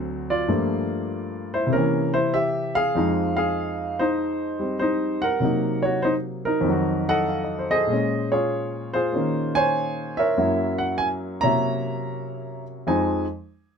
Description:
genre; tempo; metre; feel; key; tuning
solo jazz; 97 BPM; 4/4; swing 68% on 8ths; unclear; A4 = 440 Hz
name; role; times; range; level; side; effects
warm baby grand piano; solo; 0.0-13.3 s; D2 to Bb5; -21 LUFS; equal; none
room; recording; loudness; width
light reverb; close, detailed microphones; -21 LUFS; side -6 dB against mid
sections
0.0-7.9 A section; 7.9-12.9 B section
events
none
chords
0.5 Gm9; 1.7 C7b9; 3.0 Fm7; 5.4 Cm7b5; 6.7 F7b9; 7.9 Bbm9; 10.4 Gb7; 12.9 Fm7

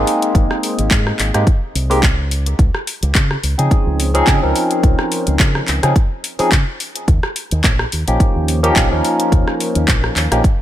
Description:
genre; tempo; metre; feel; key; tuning
nu-disco, nu disco; 107 BPM; 4/4; swing 54% on 16ths; unclear; A4 = 440 Hz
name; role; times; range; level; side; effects
barky tine electric piano; accompaniment; 0.0-10.4 s; F3 to Bb4; -18 LUFS; equal; phaser, sidechain pumping, tape echo
fingered electric bass with an envelope filter; bass; 0.0-10.4 s; Ab1 to Db3; -18 LUFS; equal; none
house drum kit; drums; 0.1-10.6 s; handclaps, hi-hat, rim click; -20 LUFS; equal; none
electronic kick drum; drums; 0.3-10.6 s; none; -14 LUFS; equal; none
room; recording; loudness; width
light reverb; none; -13 LUFS; side -12 dB against mid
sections
0.0-10.6 A section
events
none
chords
0.0 Abadd9; 2.3 Dbmaj7; 7.1 Eb9

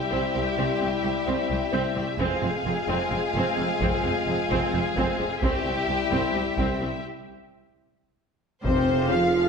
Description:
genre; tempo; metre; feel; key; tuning
cinematic, epic orchestral film score; 260 BPM (eighths); 7/8; straight; unclear; A4 = 440 Hz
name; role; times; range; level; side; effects
rich symphonic violin section; melody; 0.0-9.5 s; C5 to F5; -33 LUFS; left 5 dB; none
rich symphonic violin section; second line; 0.0-9.5 s; G4 to F5; -29 LUFS; left 1 dB; none
warm French horn section; sustained chords; 0.0-9.5 s; G3 to F4; -28 LUFS; left 3 dB; none
rich studio viola section; accompaniment; 0.1-9.5 s; C4 to F5; -30 LUFS; right 2 dB; none
clear symphonic cello section; bass; 0.1-9.5 s; C2 to F3; -32 LUFS; right 3 dB; none
rich symphonic double bass section; bass; 0.1-9.5 s; F1 to C2; -33 LUFS; right 3 dB; none
taiko ensemble; drums; 2.2-9.1 s; none; -32 LUFS; equal; none
mellow tuba; bass; 8.6-9.5 s; F1; -31 LUFS; right 4 dB; none
timpani; percussion; 8.7-9.3 s; F2; -33 LUFS; left 1 dB; none
room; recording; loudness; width
wet scoring stage reverb, RT60 1.5 s; none; -23 LUFS; side -6 dB against mid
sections
0.0-8.7 A section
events
build-up 0.0-8.7; break 7.0-8.7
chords
0.0 C; 2.2 Fm; 5.4 C; 8.7 Fm

